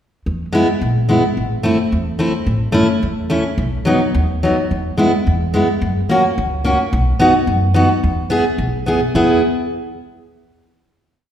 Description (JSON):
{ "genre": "alpine folk, alpine dance band", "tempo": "108 BPM", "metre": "2/4", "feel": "straight", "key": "E major", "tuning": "A4 = 444 Hz", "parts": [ { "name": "upright bass", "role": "bass", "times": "0.3-9.4 s", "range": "A1 to F#2", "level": "-19 LUFS", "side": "equal", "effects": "none" }, { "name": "picked steel-string acoustic guitar", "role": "accompaniment", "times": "0.5-9.4 s", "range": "F#3 to G#4", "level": "-15 LUFS", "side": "equal", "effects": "none" } ], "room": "wet recital hall reverb, RT60 1.5 s", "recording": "recorded in a church or concert hall", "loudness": "-14 LUFS", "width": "side -9 dB against mid", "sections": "0.3-9.1 A section; 9.1-10.2 final chord", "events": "none", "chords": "0.3 E; 1.4 Am; 2.5 A; 3.6 B; 4.7 E; 5.8 F#; 6.9 B; 8.0 E", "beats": "| 0.27 0.82 | 1.37 1.92 | 2.47 3.02 | 3.58 4.14 | 4.70 5.26 | 5.81 6.37 | 6.92 7.47 | 8.03 8.58 | 9.14" }